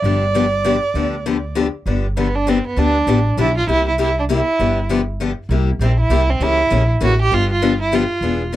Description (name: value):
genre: acoustic string swing (jazz manouche)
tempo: 198 BPM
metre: 3/4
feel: swing 58% on 8ths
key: G mixolydian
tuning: A4 = 437 Hz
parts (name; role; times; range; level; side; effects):
- warm violin; melody; 0.0-8.5 s; B3 to D5; -19 LUFS; right 3 dB; none
- picked steel-string acoustic guitar; accompaniment; 0.0-8.6 s; C3 to G#4; -20 LUFS; left 5 dB; none
- upright bass; bass; 0.0-8.6 s; E1 to D2; -19 LUFS; equal; none
room: little or no reverb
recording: dry, close 1970s-style studio recording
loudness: -15 LUFS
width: side -14 dB against mid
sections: 0.0-1.9 A section; 1.9-8.6 A section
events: none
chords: 0.0 G7; 3.7 C7; 4.6 G7; 5.5 C7; 6.4 C#dim7; 7.3 G7